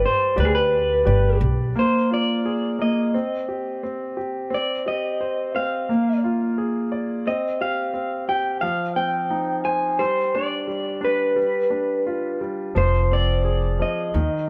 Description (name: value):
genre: acoustic folk-pop ballad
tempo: 87 BPM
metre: 4/4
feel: straight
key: C minor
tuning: A4 = 438 Hz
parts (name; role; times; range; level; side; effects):
- electric guitar through a small old amp; melody; 0.0-14.5 s; Ab4 to Ab5; -25 LUFS; equal; harmonic tremolo
- clear concert grand piano; accompaniment; 0.0-14.5 s; Eb3 to D5; -27 LUFS; equal; none
- upright bass; bass; 0.0-1.7, 12.8-14.3 s; F1 to Eb2; -23 LUFS; equal; none
room: light reverb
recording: none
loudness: -22 LUFS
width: mono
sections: 0.0-1.8 A section; 1.8-14.5 B section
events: none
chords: 0.0 G; 1.8 Bb7; 3.1 C5; 5.9 Bb7; 7.3 C5; 8.6 F5; 10.0 G5; 11.4 G7; 12.8 Fm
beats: 0.37 1.06 | 1.75 2.44 3.14 3.83 | 4.51 5.20 5.88 6.57 | 7.26 7.94 8.63 9.31 | 10.00 10.69 11.37 12.07 | 12.76 13.45 14.14